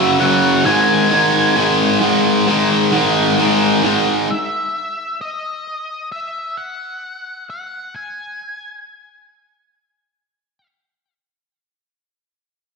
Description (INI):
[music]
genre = rock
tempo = 66 BPM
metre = 4/4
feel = straight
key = unclear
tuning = A4 = 441 Hz
[part]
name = octave-fuzz lead guitar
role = melody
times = 0.0-10.7 s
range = D#5 to G#5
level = -22 LUFS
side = left 1 dB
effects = distortion, ping-pong delay
[part]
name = tight distorted guitar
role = riff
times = 0.0-4.3 s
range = F#2 to G#3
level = -13 LUFS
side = equal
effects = distortion
[sound]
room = wet lush hall reverb, RT60 1.6 s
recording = dreamy mix soaked in reverb, nothing above 10.8 kHz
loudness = -13 LUFS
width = side -4 dB against mid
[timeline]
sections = 0.0-4.3 A section; 4.3-11.6 B section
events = fade-out 4.3-11.6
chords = 0.0 F#5; 0.7 G#5; 4.3 N.C.